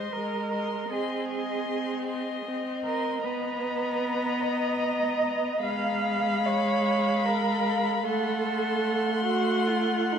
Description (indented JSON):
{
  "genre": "classical, slow romantic movement for string quartet",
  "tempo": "76 BPM",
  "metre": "3/4",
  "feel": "rubato",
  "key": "unclear",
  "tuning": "A4 = 440 Hz",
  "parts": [
    { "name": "muted violin", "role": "melody", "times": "0.0-10.2 s", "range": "A#5 to C6", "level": "-35 LUFS", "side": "left 8 dB", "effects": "none" },
    { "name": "muted violin", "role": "second line", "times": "0.0-10.2 s", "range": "Eb5 to F#5", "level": "-31 LUFS", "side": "left 3 dB", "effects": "none" },
    { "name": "muted viola", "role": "accompaniment", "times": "0.0-10.2 s", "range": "Ab3 to C4", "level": "-29 LUFS", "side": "right 1 dB", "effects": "none" },
    { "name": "muted cello", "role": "bass", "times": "0.0-10.2 s", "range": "Eb4 to F5", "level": "-30 LUFS", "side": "right 6 dB", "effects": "none" }
  ],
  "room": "wet huge ambient reverb, RT60 7.9 s",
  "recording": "in a vast, echoing space",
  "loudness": "-25 LUFS",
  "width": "side -8 dB against mid",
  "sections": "0.0-10.2 A section",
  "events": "none",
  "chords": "0.0 Ab; 0.9 Ab/C; 3.2 Bmaj7; 5.6 Fdim/Ab; 8.0 Am6",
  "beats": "0.12 | 0.90 1.69 2.46 | 3.24 4.03 4.82 | 5.64 6.45 7.24 | 8.04 8.84 9.68"
}